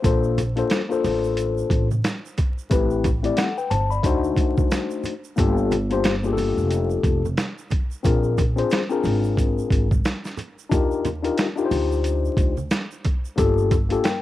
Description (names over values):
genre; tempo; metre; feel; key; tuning
hip hop, jazz-hop; 90 BPM; 4/4; swing 59% on 16ths; unclear; A4 = 440 Hz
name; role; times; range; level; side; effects
mellow tine electric piano; accompaniment; 0.0-14.2 s; A3 to B5; -22 LUFS; left 5 dB; phaser, cassette tape
upright bass; bass; 0.0-13.9 s; F1 to Eb2; -24 LUFS; equal; none
boom bap sampler-style drum kit; drums; 0.0-14.2 s; hi-hat, kick drum, snare drum; -23 LUFS; equal; cassette tape
egg shaker and congas; percussion; 0.0-14.2 s; none; -34 LUFS; right 6 dB; none
room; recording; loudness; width
studio ambience; home recording on cassette, vinyl crackle; -19 LUFS; side -14 dB against mid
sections
0.0-14.2 A section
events
none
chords
0.0 Bbmaj9; 2.7 Am9; 4.0 D7b9; 5.4 Gm7; 8.0 Bb7; 10.7 Ebmaj7; 13.4 Gm7